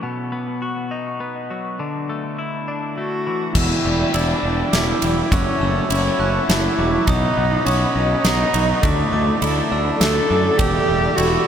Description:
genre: post-rock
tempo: 102 BPM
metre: 3/4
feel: straight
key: E dorian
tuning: A4 = 440 Hz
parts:
  - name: twelve-string electric guitar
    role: arpeggios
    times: 0.0-11.5 s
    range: E2 to F#4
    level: -25 LUFS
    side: left 2 dB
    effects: analog delay
  - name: dark cello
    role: melody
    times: 3.0-11.5 s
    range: A3 to A4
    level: -21 LUFS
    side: equal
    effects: analog delay
  - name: glockenspiel with hard plastic mallets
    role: arpeggios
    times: 3.5-11.5 s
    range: C#6 to F#6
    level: -28 LUFS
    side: right 3 dB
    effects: analog delay
  - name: fuzz fingered electric bass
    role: bass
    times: 3.5-11.4 s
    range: E1 to F#2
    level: -22 LUFS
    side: equal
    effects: overdrive
  - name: huge arena drum kit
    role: drums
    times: 3.5-11.3 s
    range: crash cymbal, kick drum, ride cymbal, snare drum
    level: -22 LUFS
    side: equal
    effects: none
  - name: lush unison pad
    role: sustained chords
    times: 3.6-11.5 s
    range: E4 to B5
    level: -28 LUFS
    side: equal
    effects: chorus
room: wet huge ambient reverb, RT60 7.8 s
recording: dreamy mix soaked in reverb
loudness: -17 LUFS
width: side -8 dB against mid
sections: 0.0-3.6 A section; 3.6-11.5 B section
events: none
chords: 0.0 B; 1.8 Dsus2; 3.6 Em7; 5.3 F#m7; 7.1 B; 8.8 Dsus2; 10.6 Em7

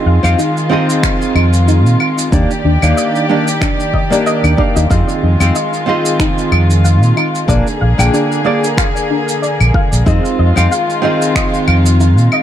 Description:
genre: sunset chillout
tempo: 93 BPM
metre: 4/4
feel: swing 55% on 16ths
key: F dorian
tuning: A4 = 440 Hz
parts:
  - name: nylon-string guitar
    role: accompaniment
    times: 0.0-12.4 s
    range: Bb3 to G5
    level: -17 LUFS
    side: equal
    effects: auto-pan, digital delay
  - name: dark studio string section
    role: sustained chords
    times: 0.0-12.4 s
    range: D3 to D5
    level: -18 LUFS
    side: equal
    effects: none
  - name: soft round pluck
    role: arpeggios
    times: 0.1-12.4 s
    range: D4 to F5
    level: -21 LUFS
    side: left 2 dB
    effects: ensemble chorus, digital delay
  - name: fingered electric bass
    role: bass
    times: 0.1-12.3 s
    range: Bb1 to Bb2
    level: -11 LUFS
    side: equal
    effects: none
  - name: electronic claves, shaker and finger snaps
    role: drums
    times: 0.2-12.4 s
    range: none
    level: -20 LUFS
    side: right 1 dB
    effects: none
  - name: electronic kick drum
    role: drums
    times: 1.0-11.5 s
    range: none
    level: -16 LUFS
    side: equal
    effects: none
room: light reverb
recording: dark, warm production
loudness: -10 LUFS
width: side -10 dB against mid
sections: 0.0-12.4 A section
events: none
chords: 0.0 Fm7; 2.3 Ebmaj7; 4.9 Fm7; 7.5 Bb7; 10.1 Fm7

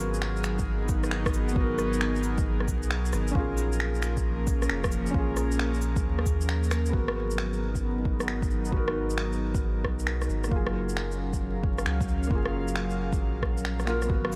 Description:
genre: future garage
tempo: 134 BPM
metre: 4/4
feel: swing 66% on 16ths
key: G# dorian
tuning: A4 = 441 Hz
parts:
  - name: felt-muted upright piano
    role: accompaniment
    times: 0.0-14.4 s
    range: A#3 to A#4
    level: -37 LUFS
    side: equal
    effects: sidechain pumping, digital delay
  - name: airy breathy pad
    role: sustained chords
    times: 0.0-14.4 s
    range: E#3 to E#5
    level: -35 LUFS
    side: equal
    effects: chorus, sidechain pumping
  - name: soft dub sub bass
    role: bass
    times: 0.0-14.4 s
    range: E#1 to D#2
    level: -32 LUFS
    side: equal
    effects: sidechain pumping
  - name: electronic shaker, finger snaps, cabasa and rim click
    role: drums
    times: 0.1-14.4 s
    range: none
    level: -36 LUFS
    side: equal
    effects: overdrive, studio ambience
  - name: electronic kick drum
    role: drums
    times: 0.6-14.2 s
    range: none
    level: -32 LUFS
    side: equal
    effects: overdrive, studio ambience
room: light reverb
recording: vinyl crackle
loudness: -28 LUFS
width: mono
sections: 0.0-6.9 A section; 6.9-14.4 B section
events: none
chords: 0.0 G#m9; 3.4 A#m7; 6.9 G#m9; 10.5 F#maj9

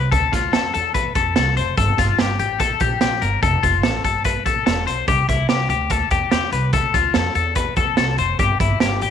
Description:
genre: jangly indie pop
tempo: 145 BPM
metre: 4/4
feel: straight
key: unclear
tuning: A4 = 439 Hz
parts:
  - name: twelve-string electric guitar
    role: arpeggios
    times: 0.0-9.1 s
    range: E4 to C5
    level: -20 LUFS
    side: left 11 dB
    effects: none
  - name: upright bass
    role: bass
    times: 0.0-9.1 s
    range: E1 to F2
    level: -23 LUFS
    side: right 1 dB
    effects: none
  - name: raw garage drum kit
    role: drums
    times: 0.1-9.1 s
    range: hi-hat, kick drum, snare drum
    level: -21 LUFS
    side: right 4 dB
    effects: none
room: light reverb, small room ambience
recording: 1960s-style stereo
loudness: -16 LUFS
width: side -8 dB against mid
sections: 0.0-9.1 A section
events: none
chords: 0.1 Dm7; 1.8 Gmadd9; 3.4 F; 5.1 C; 6.7 Dm7; 8.4 N.C.

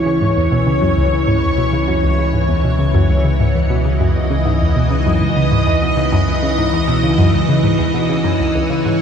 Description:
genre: ambient, sequencer-driven space music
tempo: 99 BPM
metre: 4/4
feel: straight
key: C# minor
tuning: A4 = 440 Hz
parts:
  - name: string machine, full ensemble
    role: sustained chords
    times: 0.0-9.0 s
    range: E3 to D#5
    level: -16 LUFS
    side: left 1 dB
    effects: ensemble chorus
  - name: Celtic harp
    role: arpeggios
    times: 0.0-9.0 s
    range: C#4 to E5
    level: -36 LUFS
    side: equal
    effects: none
  - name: round analog bass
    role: bass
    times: 0.0-9.0 s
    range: C#2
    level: -20 LUFS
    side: equal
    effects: none
  - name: bubbling stepped-filter texture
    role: texture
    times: 0.0-9.0 s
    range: F#5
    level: -38 LUFS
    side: right 4 dB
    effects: none
  - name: analog pluck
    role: riff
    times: 0.1-8.9 s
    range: C#2 to C#3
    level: -17 LUFS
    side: equal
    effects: chorus, phaser, analog delay
room: moderate lush hall reverb, RT60 2.9 s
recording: nothing above 10.4 kHz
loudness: -13 LUFS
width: side -7 dB against mid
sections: 0.0-9.0 A section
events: none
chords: 0.0 C#madd9

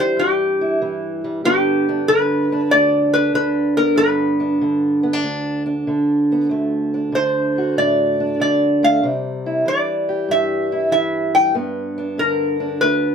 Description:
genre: acoustic country blues, solo or duo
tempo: 95 BPM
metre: 4/4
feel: swing 67% on 8ths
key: G major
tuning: A4 = 437 Hz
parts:
  - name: metal-body resonator slide guitar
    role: melody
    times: 0.0-13.1 s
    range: G4 to G5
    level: -18 LUFS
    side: equal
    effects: none
  - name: fingerpicked steel-string acoustic guitar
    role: accompaniment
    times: 0.0-13.1 s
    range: D2 to G4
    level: -19 LUFS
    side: right 1 dB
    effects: none
room: wet small room reverb, RT60 0.5 s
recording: none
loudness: -16 LUFS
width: side -7 dB against mid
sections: 0.0-13.1 A section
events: none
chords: 0.0 C (rootless); 1.4 G; 6.5 D; 9.0 C; 11.5 G

